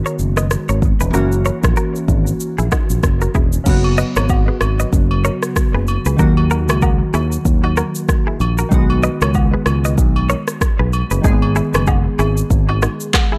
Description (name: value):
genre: afrobeats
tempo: 95 BPM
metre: 4/4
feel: swing 58% on 16ths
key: unclear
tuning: A4 = 439 Hz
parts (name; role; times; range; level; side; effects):
- glassy digital keys; accompaniment; 0.0-13.4 s; C#3 to G#4; -24 LUFS; equal; chorus
- direct-recorded clean electric guitar; riff; 0.1-13.4 s; D#4 to D#5; -25 LUFS; equal; tremolo, analog delay
- afro-pop drum kit; drums; 0.1-13.3 s; crash cymbal, handclaps, kick drum, rim click, shaker; -19 LUFS; equal; none
- fingered electric bass; bass; 0.2-12.9 s; E1 to D#2; -19 LUFS; equal; none
- agogo bells and woodblock; percussion; 3.8-13.3 s; none; -29 LUFS; equal; none
room: digital ambience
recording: dry, gritty hardware recording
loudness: -16 LUFS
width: mono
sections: 0.0-3.7 A section; 3.7-13.4 B section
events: none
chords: 0.0 G#m7; 1.1 F#7; 3.7 F#sus4; 6.2 D#m; 8.7 B6; 11.2 G#m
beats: 0.51 | 1.14 1.77 2.40 3.03 | 3.67 4.30 4.93 5.56 | 6.19 6.82 7.45 8.09 | 8.72 9.35 9.98 10.61 | 11.24 11.88 12.51 13.14